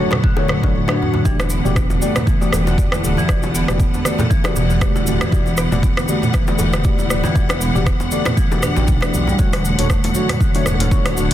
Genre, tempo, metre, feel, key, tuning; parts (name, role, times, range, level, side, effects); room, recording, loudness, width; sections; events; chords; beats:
afro house; 118 BPM; 4/4; swing 56% on 16ths; E dorian; A4 = 440 Hz
rich studio string section; sustained chords; 0.0-11.3 s; D3 to F#5; -27 LUFS; left 1 dB; sidechain pumping
marimba with medium hard mallets; arpeggios; 0.0-11.3 s; A2 to E4; -22 LUFS; equal; sidechain pumping, digital delay
deep mellow chord stab; stabs; 0.0-11.3 s; A3 to D5; -25 LUFS; left 2 dB; chorus, phaser, sidechain pumping, digital delay
afro-pop drum kit; drums; 0.1-11.3 s; hi-hat, rim click, toms; -24 LUFS; equal; overdrive
bongos; percussion; 0.1-11.3 s; -30 LUFS; left 4 dB
congas; percussion; 0.1-11.3 s; -27 LUFS; right 2 dB
electronic kick drum; drums; 0.2-11.0 s; -18 LUFS; equal; overdrive
dark detuned saw bass; bass; 0.6-11.3 s; D1 to B1; -22 LUFS; equal; sidechain pumping
cabasa; percussion; 1.3-11.3 s; -31 LUFS; left 1 dB
light reverb, studio reverb; dense, heavily limited modern master; -15 LUFS; side -12 dB against mid
0.0-11.3 A section
kick drops out 0.7-1.3
0.0 Dmaj7; 1.3 Em11; 9.4 Dmaj7
0.24 0.75 | 1.26 1.76 2.27 2.78 | 3.29 3.80 4.31 4.82 | 5.32 5.83 6.34 6.85 | 7.36 7.87 8.38 8.88 | 9.39 9.90 10.41 10.92